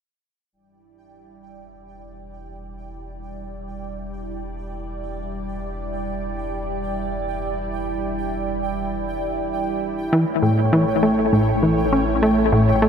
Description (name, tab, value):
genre	ambient, sequencer-driven space music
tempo	free time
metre	none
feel	none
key	E dorian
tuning	A4 = 440 Hz
part	lush unison pad	sustained chords	0.5-12.9 s	G3 to D5	-26 LUFS	right 1 dB	chorus, phaser
part	warm sub bass	bass	0.5-12.9 s	E1 to A1	-32 LUFS	equal	none
part	pulsing gated texture	texture	1.1-12.9 s	G5	-32 LUFS	right 3 dB	chorus, built-in reverb
part	plucky analog bass	riff	10.1-12.9 s	A2 to C#4	-17 LUFS	left 1 dB	ping-pong delay
room	wet plate reverb, RT60 2.7 s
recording	none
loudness	-19 LUFS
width	side -7 dB against mid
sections	0.5-12.9 A section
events	fade-in on analog synth pad 0.5-12.9; fade-in on sub bass 0.5-12.9; fade-in on synth texture 0.5-12.9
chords	0.5 Em7; 10.1 A